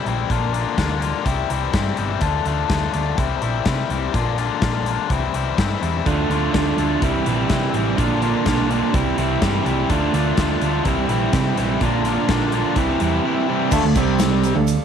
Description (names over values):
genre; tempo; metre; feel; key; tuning
classic rock; 125 BPM; 4/4; straight; unclear; A4 = 440 Hz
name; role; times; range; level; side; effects
biting overdriven guitar; riff; 0.0-14.7 s; Bb2 to F4; -22 LUFS; left 9 dB; none
hollow-body short-scale picked electric bass; bass; 0.1-14.8 s; G1 to C3; -24 LUFS; right 1 dB; none
big rock drum kit; drums; 0.1-14.8 s; crash cymbal, hi-hat, kick drum, snare drum; -25 LUFS; left 1 dB; none
crunchy overdriven guitar; riff; 6.1-14.7 s; Bb2 to F4; -21 LUFS; right 11 dB; none
clear grand piano; accompaniment; 13.7-14.8 s; G4 to Bb5; -28 LUFS; right 10 dB; none
tube shaker; percussion; 13.7-14.8 s; none; -37 LUFS; right 14 dB; none
room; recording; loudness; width
light reverb, small room ambience; 1960s-style stereo with parts hard left and right; -17 LUFS; side -8 dB against mid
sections
0.0-13.7 A section; 13.7-14.8 B section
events
none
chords
0.3 Bb; 1.3 C; 2.2 Dm; 3.2 C; 4.1 Bb; 5.1 C; 6.1 Dm; 7.0 C; 8.0 Bb; 8.9 C; 9.9 Dm; 10.9 C; 11.8 Bb; 12.8 C; 13.7 Dm; 14.0 C5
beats
| 0.30 0.78 1.26 1.74 | 2.22 2.70 3.18 3.66 | 4.14 4.62 5.10 5.58 | 6.06 6.54 7.02 7.50 | 7.98 8.46 8.94 9.42 | 9.90 10.38 10.86 11.34 | 11.82 12.29 12.77 13.25 | 13.72 14.20 14.67